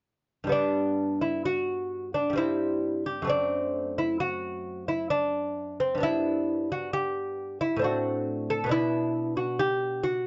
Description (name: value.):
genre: classical, baroque-style dance for lute.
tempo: 66 BPM.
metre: 3/4.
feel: uneven beats, rubato.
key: G major.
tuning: A4 = 440 Hz.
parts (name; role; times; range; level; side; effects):
lute; solo; 0.4-10.3 s; F#2 to A4; -28 LUFS; equal; none.
room: moderate small room reverb, RT60 0.5 s.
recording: dark, warm production, nothing above 7.5 kHz.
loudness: -28 LUFS.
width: mono.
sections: 0.5-10.3 A section.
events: none.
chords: 0.5 G; 2.4 C/G; 3.3 F#m7b5; 6.0 G; 7.8 D7/A; 8.7 Bmadd11.